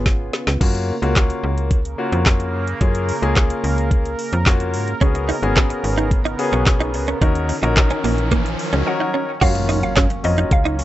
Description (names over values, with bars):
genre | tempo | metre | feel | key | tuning
dance-pop | 109 BPM | 4/4 | straight | F# major | A4 = 439 Hz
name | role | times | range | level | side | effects
mallet-like synth pluck | melody | 0.0, 8.9-10.8 s | D#5 to F#5 | -26 LUFS | equal | chorus, digital delay
warm concert grand piano | accompaniment | 0.0-10.8 s | A#3 to D#5 | -24 LUFS | left 4 dB | none
sweeping resonant pad | sustained chords | 0.0-10.8 s | C#3 to A#4 | -27 LUFS | right 3 dB | chorus, sidechain pumping
slap-like FM bass | bass | 0.0-10.8 s | G#1 to G#2 | -22 LUFS | equal | sidechain pumping
smooth R&B drum kit | drums | 0.1-10.8 s | crash cymbal, handclaps, hi-hat, kick drum, snare drum | -18 LUFS | equal | none
direct-recorded clean electric guitar | riff | 5.0-10.8 s | A#3 to F#4 | -22 LUFS | right 4 dB | ensemble chorus
riser and impact | sound effects | 6.2-10.8 s | none | -29 LUFS | equal | none
room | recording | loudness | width
little or no reverb | rough home demo mix, nothing above 8.0 kHz | -16 LUFS | side -14 dB against mid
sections
0.6-9.4 A section; 9.4-10.8 B section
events
drum fill 0.0-0.6; riser 6.2-9.4; impact 9.4-10.8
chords
0.0 C#7; 0.6 F#maj7; 5.0 C#7sus4; 7.2 D#m7; 9.4 F#maj7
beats
0.06 | 0.61 1.16 1.71 2.26 | 2.81 3.36 3.91 4.46 | 5.01 5.56 6.12 6.67 | 7.22 7.77 8.32 8.87 | 9.42 9.97 10.52